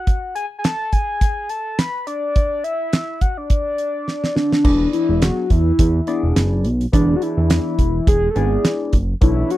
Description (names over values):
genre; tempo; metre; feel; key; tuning
early-eighties boogie funk; 105 BPM; 4/4; swing 56% on 16ths; unclear; A4 = 437 Hz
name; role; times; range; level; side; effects
soft octave-layered synth lead; melody; 0.0-9.6 s; D4 to B5; -20 LUFS; left 1 dB; chorus, slapback echo
damped 70s drum kit; drums; 0.1-9.6 s; crash cymbal, handclaps, hi-hat, kick drum, snare drum; -17 LUFS; right 1 dB; none
overdriven tine electric piano; accompaniment; 4.6-9.6 s; B3 to D5; -24 LUFS; left 3 dB; phaser
fat analog bass; bass; 4.6-9.4 s; E1 to E2; -18 LUFS; equal; none
room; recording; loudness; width
little or no reverb; dry, close 1970s-style studio recording; -16 LUFS; side -15 dB against mid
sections
0.0-4.6 A section; 4.6-9.6 B section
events
drum fill 4.1-4.6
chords
0.0 N.C.; 4.6 E7